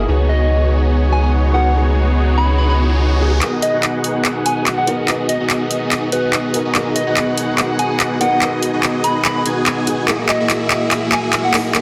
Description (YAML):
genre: future bass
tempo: 144 BPM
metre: 4/4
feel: swing 53% on 16ths, half-time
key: G# minor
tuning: A4 = 441 Hz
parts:
  - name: soft struck synth lead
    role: melody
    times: 0.0-11.7 s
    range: B4 to B5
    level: -24 LUFS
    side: equal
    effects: chorus, cassette tape, delay
  - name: felt-muted upright piano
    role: accompaniment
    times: 0.0-11.8 s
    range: A#3 to D#5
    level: -28 LUFS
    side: equal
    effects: delay
  - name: dense compressed supersaw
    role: riff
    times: 0.0-11.8 s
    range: A#3 to G#5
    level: -21 LUFS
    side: equal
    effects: cassette tape, low-pass filter
  - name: saturated sub bass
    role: bass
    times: 0.0-3.4 s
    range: C#2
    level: -17 LUFS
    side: equal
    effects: none
  - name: riser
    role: sound effects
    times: 1.6-3.4, 11.1-11.8 s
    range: none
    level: -32 LUFS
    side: equal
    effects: none
  - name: trap drum kit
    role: drums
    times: 3.4-11.8 s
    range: handclaps, hi-hat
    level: -21 LUFS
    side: equal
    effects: low-pass filter on snare, small room ambience, low-pass filter on hats
room: moderate digital room reverb, RT60 1.2 s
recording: dense, heavily limited modern master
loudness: -16 LUFS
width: mono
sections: 0.0-3.4 A section; 3.4-11.8 B section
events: riser 1.6-3.4; build-up 3.4-11.8; drum fill 3.4-11.8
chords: 0.1 C#9sus4; 3.4 G#m7; 10.1 F#13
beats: | 0.08 0.50 0.92 1.33 | 1.75 2.17 2.58 3.00 | 3.42 3.83 4.25 4.67 | 5.08 5.50 5.92 6.33 | 6.75 7.17 7.58 8.00 | 8.42 8.83 9.25 9.67 | 10.08 10.50 10.92 11.33 | 11.75